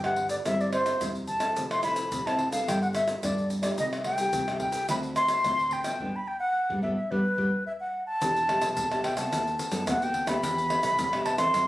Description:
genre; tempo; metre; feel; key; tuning
samba and choro; 108 BPM; 4/4; straight; G major; A4 = 440 Hz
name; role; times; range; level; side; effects
breathy bright baroque flute; melody; 0.0-11.7 s; B4 to C6; -27 LUFS; equal; none
nylon-string guitar; accompaniment; 0.0-11.7 s; G2 to B4; -32 LUFS; left 1 dB; none
fingered electric bass; bass; 0.0-11.7 s; E1 to G2; -36 LUFS; equal; none
egg shaker, pandeiro, tamborim and surdo; percussion; 0.0-11.7 s; none; -33 LUFS; equal; none
room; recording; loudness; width
moderate studio reverb, RT60 0.9 s; recorded on a phone in the room, studio ambience; -25 LUFS; side -15 dB against mid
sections
0.0-8.2 A section; 8.2-11.7 B section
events
band accent 6.0-8.2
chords
0.5 C7/G; 1.6 Fmaj7; 2.7 Gadd9; 3.8 Cm6; 4.9 D7; 6.0 G; 8.2 Em7; 9.3 B7/D#; 10.4 Em7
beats
0.45 1.01 | 1.56 2.12 2.67 3.23 | 3.78 4.34 4.89 5.45 | 6.00 6.55 7.11 7.66 | 8.22 8.77 9.33 9.88 | 10.43 10.99 11.54

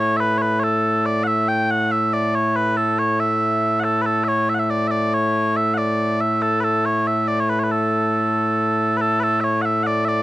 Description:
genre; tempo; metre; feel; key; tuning
scottish traditional; 93 BPM (dotted quarters); 6/8; straight; A major; A4 = 438 Hz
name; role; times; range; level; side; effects
mellow small bagpipes; solo; 0.0-10.2 s; A2 to G5; -17 LUFS; equal; none
room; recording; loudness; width
light reverb; dry, close 1970s-style studio recording; -17 LUFS; side -16 dB against mid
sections
0.0-9.0 A section; 9.0-10.2 A section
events
none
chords
none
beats
0.62 | 1.27 1.91 | 2.56 3.20 | 3.85 4.49 | 5.14 5.79 | 6.43 7.08 | 7.72 8.37 | 9.01 9.65

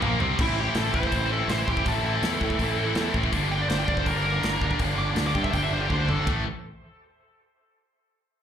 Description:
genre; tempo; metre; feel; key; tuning
heavy metal; 163 BPM; 4/4; straight; A phrygian; A4 = 440 Hz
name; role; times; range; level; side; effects
heavy high-gain guitar; riff; 0.0-6.4 s; A2 to E4; -29 LUFS; left 16 dB; distortion, slapback echo
high-gain distorted guitar; riff; 0.0-6.4 s; G2 to C4; -30 LUFS; right 11 dB; distortion, slapback echo
growling fingered electric bass; bass; 0.0-6.4 s; G1 to A2; -28 LUFS; equal; overdrive
modern studio drum kit; drums; 0.0-6.4 s; crash cymbal, hi-hat, kick drum, ride cymbal, snare drum, toms; -30 LUFS; equal; none
high-gain lead guitar; melody; 0.4-6.3 s; E4 to D6; -30 LUFS; right 1 dB; distortion, tape echo
room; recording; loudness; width
little or no reverb; live gig heard through the venue's PA, club reverb; -22 LUFS; side -8 dB against mid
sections
0.4-6.3 A section; 6.3-7.7 B section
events
drum fill 0.0-0.4, 5.9-6.3; lead electric guitar solo 0.4-6.3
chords
0.4 Am; 3.3 Gm; 6.3 A5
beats
0.02 | 0.39 0.76 1.12 1.49 | 1.86 2.22 2.59 2.96 | 3.33 3.69 4.06 4.43 | 4.80 5.17 5.54 5.90 | 6.27

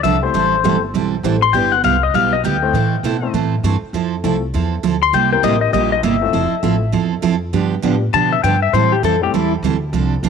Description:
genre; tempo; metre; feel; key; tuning
country, western swing; 200 BPM; 4/4; swing 62% on 8ths; unclear; A4 = 440 Hz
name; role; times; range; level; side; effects
pedal steel guitar; second line; 0.0-9.5 s; E4 to C6; -16 LUFS; left 11 dB; none
picked steel-string acoustic guitar; accompaniment; 0.0-10.3 s; C3 to A4; -19 LUFS; right 10 dB; none
upright bass; bass; 0.0-10.3 s; F1 to B2; -21 LUFS; equal; none
dark upright piano; accompaniment; 0.2-9.3 s; G3 to C5; -24 LUFS; left 10 dB; none
room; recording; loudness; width
light reverb, small room ambience; 1960s-style stereo with parts hard left and right; -14 LUFS; side -6 dB against mid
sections
0.0-10.3 A section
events
pedal steel guitar solo 0.0-10.3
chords
0.3 Am7; 1.5 G6; 2.7 Am; 3.9 Fmaj7; 5.1 C7; 6.3 Fmaj7; 7.5 G7; 8.7 Am7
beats
0.04 | 0.34 0.64 0.94 1.24 | 1.54 1.84 2.14 2.44 | 2.74 3.04 3.34 3.64 | 3.94 4.24 4.54 4.84 | 5.13 5.43 5.74 6.04 | 6.34 6.64 6.94 7.24 | 7.54 7.84 8.14 8.44 | 8.74 9.04 9.34 9.63 | 9.94 10.23

